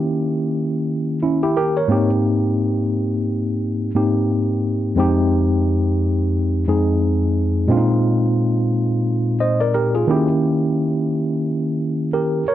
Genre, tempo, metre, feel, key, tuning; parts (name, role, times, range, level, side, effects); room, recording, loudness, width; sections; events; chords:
hip hop; 88 BPM; 4/4; swing 60% on 16ths; A4 = 440 Hz
tine electric piano; solo; 0.0-12.5 s; F2 to Eb5; -17 LUFS; equal; medium stereo tremolo
light reverb, digital ambience; dark, warm production; -17 LUFS; side -12 dB against mid
0.0-12.5 A section
0.0 Eb7b9; 1.9 Abmaj7; 5.0 Fm9; 7.7 Bb7sus4; 10.1 Eb7b9